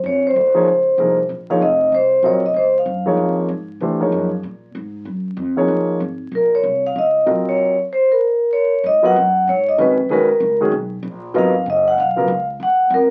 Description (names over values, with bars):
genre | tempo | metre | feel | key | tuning
modal jazz | 191 BPM | 4/4 | swing 61% on 8ths | G# dorian from 8.8 s | A4 = 442 Hz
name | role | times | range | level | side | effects
upright bass | bass | 0.0-13.1 s | F1 to Bb2 | -30 LUFS | equal | none
vibraphone with medium mallets | melody | 0.1-3.4, 6.4-13.1 s | Bb4 to F#5 | -17 LUFS | equal | none
dark concert grand piano | accompaniment | 0.5-12.3 s | C#3 to Eb5 | -21 LUFS | equal | none
room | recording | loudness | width
moderate studio reverb, RT60 0.6 s | very old 78 rpm record, vinyl crackle | -17 LUFS | mono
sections
0.0-8.8 A section; 8.8-13.1 B section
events
none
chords
0.0 Bbm11; 3.8 Ebm11; 8.8 G#m11